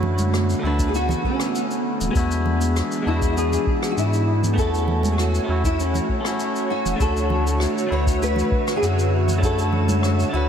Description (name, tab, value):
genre	sunset chillout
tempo	99 BPM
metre	4/4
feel	straight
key	D lydian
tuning	A4 = 436 Hz
part	clean electric guitar	accompaniment	0.0-10.5 s	D3 to C#5	-26 LUFS	moving between left 4 dB and right 3 dB	auto-pan, diffuse ambient delay
part	airy breathy pad	sustained chords	0.0-10.5 s	D3 to C#5	-26 LUFS	right 1 dB	chorus
part	warm sub bass	bass	0.0-10.5 s	D1 to G#2	-22 LUFS	equal	none
part	congas	percussion	0.0-10.0 s	none	-32 LUFS	right 5 dB	none
part	shaker and rim click	drums	0.2-10.3 s	none	-33 LUFS	left 1 dB	none
part	nylon-string guitar	melody	0.7-10.5 s	C#4 to C#5	-26 LUFS	left 1 dB	ensemble chorus, diffuse ambient delay
part	electronic kick drum	drums	0.8-9.5 s	none	-23 LUFS	equal	overdrive
part	wind-like tuned noise texture	texture	8.2-10.5 s	E5 to E6	-35 LUFS	right 2 dB	built-in reverb, analog chorus
room	moderate lush hall reverb, RT60 2.6 s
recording	dreamy mix soaked in reverb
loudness	-19 LUFS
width	side -8 dB against mid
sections	0.0-10.5 A section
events	none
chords	0.0 Dmaj7; 2.1 E7; 4.6 A69/E; 7.0 Dmaj7